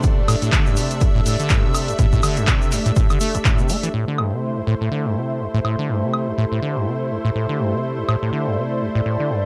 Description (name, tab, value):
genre	acid house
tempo	123 BPM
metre	4/4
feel	swing 57% on 16ths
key	A minor pentatonic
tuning	A4 = 440 Hz
part	lush unison pad	sustained chords	0.0-9.5 s	A3 to E5	-29 LUFS	equal	chorus, sidechain pumping
part	acid bass, saw	riff	0.0-9.5 s	A1 to A3	-24 LUFS	equal	tube saturation, sidechain pumping
part	electronic kick drum	drums	0.0-3.6 s	none	-21 LUFS	equal	none
part	punchy analog drum machine	drums	0.0-8.2 s	handclaps, hi-hat, woodblock	-26 LUFS	equal	none
part	egg shaker	percussion	0.0-3.9 s	none	-37 LUFS	equal	none
part	warbly tape-like pad	texture	0.0-9.5 s	A3 to E5	-31 LUFS	equal	chorus, built-in reverb, sidechain pumping
room	little or no reverb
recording	dry, gritty hardware recording, cassette tape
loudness	-20 LUFS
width	mono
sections	0.0-3.9 A section; 3.9-9.5 B section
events	drop 0.0-3.9; filter sweep on analog synth pad 3.9-9.5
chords	0.0 Am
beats	| 0.04 0.53 1.01 1.50 | 1.99 2.48 2.96 3.45 | 3.94 4.43 4.92 5.40 | 5.89 6.38 6.87 7.36 | 7.84 8.33 8.82 9.31